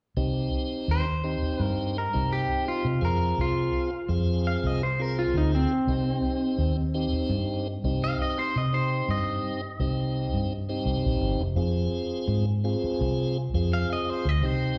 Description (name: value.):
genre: straight-eighth soul blues.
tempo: 84 BPM.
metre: 4/4.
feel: straight.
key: C minor.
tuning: A4 = 440 Hz.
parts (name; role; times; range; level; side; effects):
tonewheel organ; accompaniment; 0.2-14.8 s; C4 to Ab4; -33 LUFS; equal; overdrive, slow rotary speaker, slapback echo.
vintage muted fingered electric bass; bass; 0.2-14.7 s; F1 to C3; -28 LUFS; equal; none.
electric guitar at the edge of break-up; melody; 0.9-14.8 s; C4 to F5; -32 LUFS; equal; spring reverb, slapback echo.
room: little or no reverb.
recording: live gig heard through the venue's PA, club reverb.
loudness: -27 LUFS.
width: mono.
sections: 0.2-14.8 A section.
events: none.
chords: 0.2 Cm; 3.0 Fm; 5.9 Cm; 11.6 Fm.